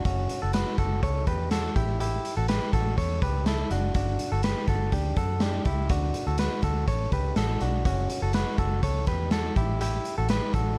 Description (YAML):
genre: jangly indie pop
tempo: 123 BPM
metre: 4/4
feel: straight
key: unclear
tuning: A4 = 440 Hz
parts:
  - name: direct-recorded clean electric guitar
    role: arpeggios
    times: 0.0-10.8 s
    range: C#4 to C#5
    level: -33 LUFS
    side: equal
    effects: delay
  - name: vintage muted fingered electric bass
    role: bass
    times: 0.1-10.7 s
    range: F#1 to F#2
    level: -30 LUFS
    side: equal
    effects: tube saturation
  - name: raw garage drum kit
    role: drums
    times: 0.1-10.7 s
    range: hi-hat, kick drum, snare drum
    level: -31 LUFS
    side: equal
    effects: none
room: small room ambience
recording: none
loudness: -27 LUFS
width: mono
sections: 0.0-10.8 A section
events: none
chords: 0.1 F#m7; 1.8 A7; 4.0 Gmaj7; 5.9 Dmaj7; 7.9 F#m7; 9.6 A7(no3)